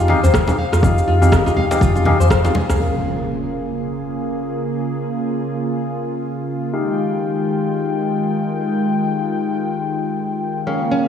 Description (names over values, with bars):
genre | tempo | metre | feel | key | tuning
afro house | 122 BPM | 4/4 | swing 58% on 16ths | F minor | A4 = 441 Hz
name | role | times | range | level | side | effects
nylon-string guitar | arpeggios | 0.0-2.8, 10.7-11.1 s | Db4 to F5 | -23 LUFS | left 2 dB | sidechain pumping, diffuse ambient delay
tine electric piano | stabs | 0.0-11.1 s | Db4 to F5 | -23 LUFS | left 3 dB | lush chorus, sidechain pumping, low-pass filter, diffuse ambient delay
warm sub bass | bass | 0.0-2.8 s | C2 to F2 | -16 LUFS | equal | tube saturation, sidechain pumping
electronic cabasa and rim click | drums | 0.0-10.9 s | none | -23 LUFS | left 1 dB | overdrive, low-pass filter on perc, low-pass filter on snare, low-pass filter on room
congas | percussion | 0.1-2.7 s | none | -23 LUFS | right 2 dB | none
djembe | percussion | 0.1-2.8 s | none | -25 LUFS | left 3 dB | none
electronic kick drum | drums | 0.3-2.4 s | none | -18 LUFS | equal | overdrive
warm analog pad | sustained chords | 2.8-11.1 s | Db3 to G5 | -21 LUFS | equal | lush chorus, sidechain pumping
impact | sound effects | 2.8-4.8 s | none | -26 LUFS | equal | none
room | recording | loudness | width
moderate lush hall reverb, RT60 1.8 s | dreamy mix soaked in reverb, small room ambience | -17 LUFS | side -8 dB against mid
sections
0.0-2.8 A section; 2.8-11.1 B section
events
impact 2.8-4.8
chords
0.0 Fm9; 2.8 Db6; 6.7 Fm9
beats
0.34 | 0.83 1.32 1.82 2.31 | 2.80 3.29 3.78 4.28 | 4.77 5.26 5.75 6.24 | 6.73 7.22 7.72 8.21 | 8.70 9.19 9.68 10.18 | 10.67